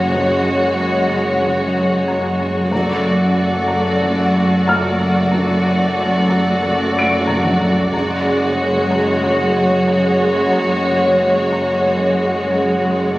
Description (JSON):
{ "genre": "cinematic, suspense film score", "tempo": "92 BPM", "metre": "4/4", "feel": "straight", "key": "F# harmonic minor", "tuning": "A4 = 439 Hz", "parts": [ { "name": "muted studio violin section", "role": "melody", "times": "0.0-13.2 s", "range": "C#5 to D5", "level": "-20 LUFS", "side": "left 1 dB", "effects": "none" }, { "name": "muted symphonic violin section", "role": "second line", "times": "0.0-13.2 s", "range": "F#4", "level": "-21 LUFS", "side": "equal", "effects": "none" }, { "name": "muted symphonic viola section", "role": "accompaniment", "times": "0.0-13.2 s", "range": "G#3 to A3", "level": "-22 LUFS", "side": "equal", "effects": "none" }, { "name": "muted symphonic cello section", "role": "bass", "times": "0.0-13.2 s", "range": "F#2", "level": "-19 LUFS", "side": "right 1 dB", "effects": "none" }, { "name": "muted symphonic double bass section", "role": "bass", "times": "0.0-13.2 s", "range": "F#1", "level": "-24 LUFS", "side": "equal", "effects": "none" }, { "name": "dark baby grand piano", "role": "texture", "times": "0.0-13.2 s", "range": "A5 to D7", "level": "-24 LUFS", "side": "equal", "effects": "none" }, { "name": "marimba with medium mallets", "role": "riff", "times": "0.1-13.2 s", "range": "F#2", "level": "-29 LUFS", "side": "left 1 dB", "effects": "none" }, { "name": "taiko ensemble", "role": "drums", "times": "0.1-13.2 s", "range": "none", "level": "-26 LUFS", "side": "equal", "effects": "none" } ], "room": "wet scoring stage reverb, RT60 1.6 s", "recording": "recorded on a phone in the room, studio reverb, compression", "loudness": "-14 LUFS", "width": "side -17 dB against mid", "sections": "0.0-13.2 A section", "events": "drum fill 7.3-7.9", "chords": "0.0 F#sus2; 2.7 D/F#; 7.9 F#sus2" }